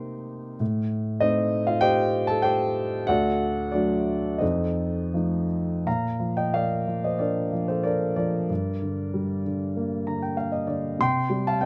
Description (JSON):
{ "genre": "classical, lyrical solo piano", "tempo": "80-100 BPM", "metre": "4/4", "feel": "rubato", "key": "Bb major from 5.9 s", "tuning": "A4 = 436 Hz", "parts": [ { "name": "dark baby grand piano", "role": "solo", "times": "0.0-11.7 s", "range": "D2 to C6", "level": "-26 LUFS", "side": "equal", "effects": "none" } ], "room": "light reverb", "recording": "close, detailed microphones", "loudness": "-25 LUFS", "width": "mono", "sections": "0.0-5.9 A section; 5.9-11.7 B section", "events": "grand piano fill 9.8-11.0", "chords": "0.0 Cm7; 0.6 Adim; 3.1 D; 4.4 F7; 5.9 Bb; 8.5 Gm; 11.0 C5" }